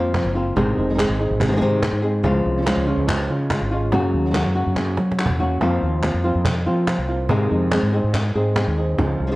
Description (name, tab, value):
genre	flamenco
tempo	142 BPM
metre	4/4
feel	straight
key	unclear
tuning	A4 = 440 Hz
part	flamenco guitar	melody	0.0-9.4 s	C3 to Ab4	-22 LUFS	left 1 dB	none
part	flamenco guitar	stabs	0.0-9.4 s	Db3 to Ab4	-26 LUFS	right 2 dB	none
part	fretless electric bass	bass	0.0-9.4 s	F1 to Gb3	-22 LUFS	equal	none
part	cajon	percussion	0.1-9.2 s	none	-26 LUFS	right 2 dB	none
part	palmas hand claps	percussion	0.1-9.2 s	none	-29 LUFS	left 1 dB	none
room	moderate large studio reverb, RT60 1.0 s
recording	worn, warbling old tape, cassette tape, warbly pitch drift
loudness	-18 LUFS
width	side -19 dB against mid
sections	0.0-9.4 A section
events	drum fill 5.0-5.6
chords	0.0 Fsus4; 0.6 Ab; 2.2 Db; 3.9 Gb; 5.6 Fsus4; 7.3 Ab